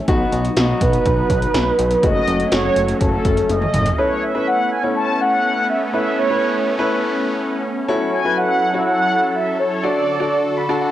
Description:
synth-pop; 123 BPM; 4/4; straight; A major from 4.0 s; A4 = 436 Hz
sweeping resonant pad; sustained chords; 0.0-10.9 s; D3 to A4; -24 LUFS; right 1 dB; chorus, cassette tape
warm concert grand piano; accompaniment; 0.1-10.9 s; A3 to B5; -21 LUFS; left 2 dB; cassette tape
fat analog bass; bass; 0.1-3.9 s; F#1 to B1; -22 LUFS; equal
80s electronic pad drums; drums; 0.1-4.0 s; hi-hat, kick drum, snare drum, toms; -21 LUFS; equal; gated reverb on snare and toms, cassette tape
mellow synth brass; melody; 0.8-10.8 s; A4 to A5; -19 LUFS; right 1 dB; chorus, analog delay
wet spring reverb, RT60 1.7 s, digital ambience; home recording on cassette; -16 LUFS; side -12 dB against mid
0.0-4.0 A section; 4.0-10.9 B section
drum fill 3.5-4.0; grand piano fill 10.3-10.9
0.1 B; 2.0 F#m; 4.0 Aadd9; 7.9 F#m7; 9.8 D

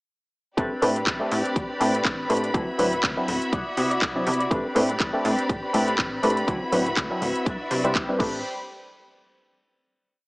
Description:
filtered disco house; 122 BPM; 4/4; swing 56% on 16ths; A dorian; A4 = 437 Hz
muted clav; accompaniment; 0.6-8.4 s; F#3 to D5; -25 LUFS; equal; phaser, sidechain pumping
warm symphonic violin section; sustained chords; 0.6-8.4 s; C4 to B5; -30 LUFS; equal; sidechain pumping
electric guitar with an envelope filter; riff; 0.6-8.4 s; F#3 to D5; -28 LUFS; left 1 dB; harmonic tremolo, sidechain pumping
plucky analog bass; bass; 0.6-8.4 s; D1 to C3; -29 LUFS; equal; sidechain pumping
electronic kick drum; drums; 0.6-8.3 s; -27 LUFS; equal
house drum kit; drums; 0.6-8.3 s; crash cymbal, handclaps, hi-hat; -29 LUFS; equal; sidechain pumping on hats, sidechain pumping on cymbals
moderate plate reverb, RT60 1.8 s, digital ambience; small speaker sound; -22 LUFS; side -25 dB against mid
0.6-8.4 drop; 8.4-10.3 final hit
drop 0.6-8.4
0.6 Am11; 2.5 D13; 3.5 Cmaj9#11; 4.5 Am11; 6.5 D13; 7.5 Cmaj9#11; 8.0 D13sus4; 8.2 Am11; 8.4 N.C.

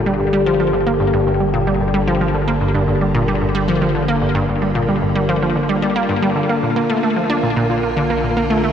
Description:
ambient, sequencer-driven space music; 112 BPM; 4/4; straight; G minor; A4 = 440 Hz
evolving wavetable pad; sustained chords; 0.0-8.7 s; D3 to Bb4; -18 LUFS; equal; chorus, built-in reverb
fat analog bass; bass; 0.0-8.7 s; G1 to Bb1; -27 LUFS; equal
resonant blip pluck; riff; 0.1-8.7 s; G2 to D4; -18 LUFS; equal; chorus, ping-pong delay
wet lush hall reverb, RT60 2.4 s; worn, warbling old tape, cassette tape, warbly pitch drift; -15 LUFS; side -8 dB against mid
0.0-8.7 A section
0.0 Gmadd9; 6.5 Bb

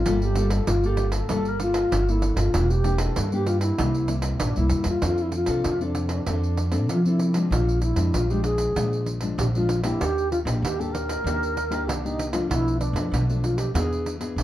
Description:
samba and choro; 96 BPM; 4/4; straight; A4 = 440 Hz
reedy wooden-headed alto flute; melody; 0.0-14.4 s; Db4 to Bb4; -27 LUFS; equal
nylon-string guitar; accompaniment; 0.0-14.4 s; F2 to A4; -29 LUFS; left 3 dB
upright bass; bass; 0.0-14.4 s; E1 to F3; -24 LUFS; equal
pandeiro; percussion; 0.1-14.4 s; -31 LUFS; right 3 dB
light reverb; dark, warm production; -21 LUFS; side -14 dB against mid
0.0-5.0 A section; 5.0-14.4 B section
0.1 Gm9; 2.5 Em7b5; 3.8 C7; 5.0 F6; 7.5 Bb7; 10.0 Ebmaj7; 12.5 Bm7b5; 13.7 E7

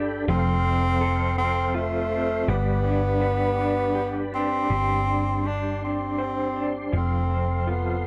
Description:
six-eight pop ballad; 54 BPM (dotted quarters); 6/8; straight; A4 = 440 Hz
electric guitar through a small old amp; accompaniment; 0.0-8.1 s; F3 to C5; -31 LUFS; equal; tremolo
tonewheel organ; sustained chords; 0.0-8.1 s; G4 to C6; -36 LUFS; equal; overdrive, chorus vibrato, slow rotary speaker
hollow-body short-scale fingered electric bass; bass; 0.0-8.1 s; F1 to G1; -29 LUFS; equal
breathy tenor saxophone; melody; 0.3-8.1 s; A3 to D4; -28 LUFS; equal
light reverb; -24 LUFS; mono
0.0-4.7 A section; 4.7-8.1 B section
0.3 F; 2.5 G; 4.7 Gsus4; 6.9 F

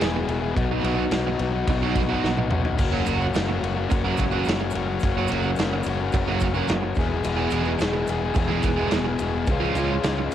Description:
indie rock; 108 BPM; 4/4; straight; F# major; A4 = 440 Hz
tonewheel organ; sustained chords; 0.0-10.3 s; F#4 to C#6; -36 LUFS; right 2 dB
biting overdriven guitar; riff; 0.0-10.2 s; E3 to G#4; -28 LUFS; right 9 dB; wide subtle chorus, cassette tape, analog delay
overdriven electric guitar; riff; 0.0-10.3 s; E2 to G#4; -26 LUFS; left 7 dB; cassette tape
modern bright fingered electric bass; bass; 0.0-10.3 s; E1 to C#2; -29 LUFS; right 1 dB
big rock drum kit; drums; 0.0-10.3 s; crash cymbal, kick drum, ride cymbal, snare drum, toms; -26 LUFS; equal
tube shaker; percussion; 2.8-10.3 s; -46 LUFS; right 10 dB
light reverb; home recording on cassette; -21 LUFS; side -10 dB against mid
0.0-10.3 A section
drum fill 2.2-2.8
0.0 E; 0.6 B; 2.8 F#maj7; 7.0 E; 9.5 C#

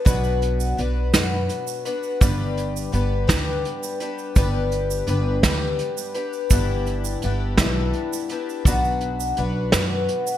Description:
indie folk with a building arrangement; 56 BPM (dotted quarters); 6/8; straight; G major; A4 = 440 Hz
picked twelve-string acoustic guitar; accompaniment; 0.0-10.4 s; G2 to B4; -25 LUFS; left 4 dB; wide subtle chorus
upright bass; bass; 0.1-10.1 s; G1 to F#2; -24 LUFS; right 1 dB
vintage brush drum kit; drums; 0.1-10.3 s; hi-hat, kick drum, snare drum; -20 LUFS; right 1 dB
tube shaker; percussion; 0.1-10.4 s; -33 LUFS; right 16 dB
light reverb, small room ambience; bright 1980s-style digital production; -20 LUFS; side -12 dB against mid
0.0-10.4 A section
0.1 Bm; 2.2 G; 6.5 Em7/G; 8.7 Bm

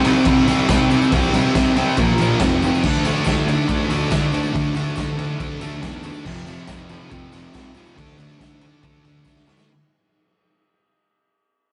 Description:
garage rock duo or trio; 140 BPM; 4/4; straight; A4 = 439 Hz
thick fuzz guitar; riff; 0.0-9.7 s; F2 to D4; -21 LUFS; equal; distortion
fuzz picked electric bass; bass; 0.0-9.5 s; F1 to E2; -28 LUFS; equal; overdrive
raw garage drum kit; drums; 0.0-9.7 s; crash cymbal, kick drum, ride cymbal, snare drum; -25 LUFS; equal
tambourine; percussion; 0.1-9.7 s; -48 LUFS; equal
wet booth ambience, RT60 0.2 s; rough rehearsal-room recording, nothing above 10.7 kHz; -18 LUFS; mono
0.0-9.7 A section
fade-out 0.0-9.7; drum fill 9.3-9.7
0.0 C5; 2.0 Bb5; 2.4 F5; 2.8 D5; 6.3 F5; 8.0 D5

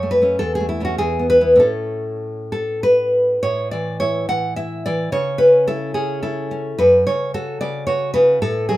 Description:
romantic piece for solo classical guitar; 93-114 BPM; 3/4; rubato; A major; A4 = 440 Hz
nylon-string guitar; solo; 0.0-8.8 s; E2 to F#5; -16 LUFS; equal
moderate studio reverb, RT60 0.6 s; minimal, uncompressed stereo recording; -16 LUFS; side -15 dB against mid
0.0-3.4 A section; 3.4-8.8 B section
0.4 A/E; 1.0 E; 1.6 A; 3.4 A5; 5.1 A/C#; 6.8 F#5

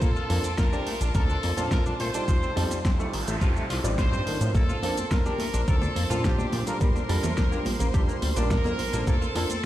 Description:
nu-disco, nu disco; 106 BPM; 4/4; straight; Bb major; A4 = 441 Hz
clear trumpet section; melody; 0.0-9.6 s; G4 to C5; -33 LUFS; equal; digital delay
dark baby grand piano; accompaniment; 0.0-9.5 s; G3 to A5; -33 LUFS; right 2 dB; sidechain pumping
warm studio string section; sustained chords; 0.0-9.7 s; F4 to C6; -38 LUFS; right 1 dB; sidechain pumping
semi-hollow electric guitar; riff; 0.0-9.6 s; Eb3 to Bb4; -35 LUFS; left 2 dB; lush chorus, digital delay
chorused synth bass; bass; 0.0-9.5 s; A1 to Bb2; -28 LUFS; equal; tube saturation, sidechain pumping
electronic kick drum; drums; 0.0-9.2 s; -24 LUFS; equal; overdrive
pop drum kit; drums; 0.0-9.6 s; hi-hat, shaker, snare drum; -34 LUFS; equal; overdrive
noise sweep; sound effects; 2.9-4.5 s; -39 LUFS; right 1 dB
soft round pluck; arpeggios; 4.5-9.6 s; G3 to D4; -38 LUFS; right 2 dB
congas; percussion; 4.5-9.6 s; -35 LUFS; equal
little or no reverb; played on a big sound system in a bare room, stone room reverb; -23 LUFS; side -14 dB against mid
0.0-9.7 A section
noise sweep 2.9-4.5
0.0 Bbmaj7; 2.3 F7/A; 4.5 Bbmaj7

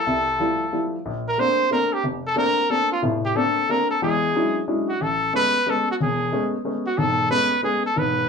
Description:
jazz; 182 BPM; 3/4; swing 63% on 8ths; A major from 5.0 s; A4 = 440 Hz
brilliant trumpet; melody; 0.0-8.3 s; F4 to C5; -21 LUFS; equal
warm baby grand piano; accompaniment; 0.1-8.2 s; E1 to E4; -24 LUFS; left 2 dB
wet small room reverb, RT60 0.5 s; band playing live in one room; -19 LUFS; side -5 dB against mid
0.0-5.0 A section; 5.0-8.3 B section
0.0 Fmaj9; 1.1 Bbmaj9; 4.0 E13; 5.0 Amaj9

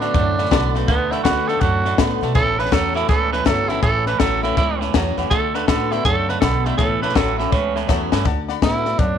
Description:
rockabilly; 163 BPM; 4/4; swing 64% on 8ths; D major; A4 = 444 Hz
breathy tenor saxophone; melody; 0.0-9.2 s; B3 to B4; -21 LUFS; right 3 dB
clear upright piano; accompaniment; 0.0-9.1 s; C#5 to B5; -30 LUFS; left 10 dB
picked steel-string acoustic guitar; accompaniment; 0.0-9.2 s; E2 to F#4; -27 LUFS; left 11 dB
twangy electric guitar; riff; 0.0-8.2 s; A2 to B3; -24 LUFS; right 16 dB
upright bass; bass; 0.0-9.2 s; G1 to B2; -24 LUFS; right 1 dB; transformer saturation
compact cocktail drum kit; drums; 0.0-9.1 s; hi-hat, kick drum, snare drum; -21 LUFS; left 3 dB
light reverb, small room ambience; 1960s-style stereo with parts hard left and right; -16 LUFS; side -8 dB against mid
0.0-8.3 A section
drum fill 7.9-8.3
0.0 D6; 2.4 A6; 5.3 D6; 6.8 A6; 8.3 D6

